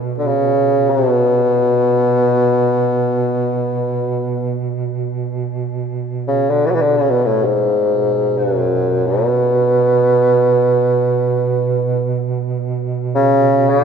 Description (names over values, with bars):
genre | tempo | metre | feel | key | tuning
caucasian folk, Caucasian lament | free time | none | none | B dorian | A4 = 440 Hz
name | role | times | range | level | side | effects
mellow duduk | drone | 0.0-13.8 s | B2 | -21 LUFS | right 7 dB | none
mellow bassoon | melody | 0.2-13.8 s | F#2 to F#3 | -14 LUFS | left 1 dB | none
room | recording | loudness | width
wet cathedral reverb, RT60 4.3 s | minimal, uncompressed stereo recording | -14 LUFS | side -6 dB against mid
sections
0.0-13.8 A section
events
none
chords
none